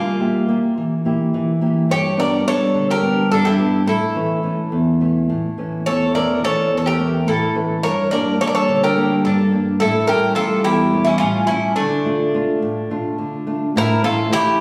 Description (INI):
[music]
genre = greek folk, Greek bouzouki band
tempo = 212 BPM (eighths)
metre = 7/8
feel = straight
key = unclear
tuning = A4 = 440 Hz
[part]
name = Greek bouzouki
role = melody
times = 0.0-14.6 s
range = D4 to D5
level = -23 LUFS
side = equal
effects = none
[part]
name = mandolin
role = second line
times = 0.0-14.6 s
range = A3 to Bb4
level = -25 LUFS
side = equal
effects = none
[part]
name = nylon-string guitar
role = accompaniment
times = 0.0-14.6 s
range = E2 to E5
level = -21 LUFS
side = equal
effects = none
[sound]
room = wet recital hall reverb, RT60 1.6 s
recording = recorded in a church or concert hall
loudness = -18 LUFS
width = mono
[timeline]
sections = 0.0-13.7 A section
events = none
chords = 0.0 Edim; 1.9 G; 3.9 A; 7.8 Gm; 9.8 A7; 11.8 Dm; 13.7 A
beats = 0.20 0.48 0.77 1.05 1.33 1.61 | 1.90 2.18 2.46 2.75 3.03 3.31 3.59 | 3.88 4.16 4.44 4.72 5.01 5.29 5.57 | 5.86 6.14 6.42 6.70 6.99 7.27 7.55 | 7.83 8.12 8.40 8.68 8.96 9.24 9.53 | 9.81 10.09 10.37 10.65 10.94 11.22 11.50 | 11.78 12.06 12.34 12.62 12.90 13.19 13.47 | 13.75 14.03 14.31 14.59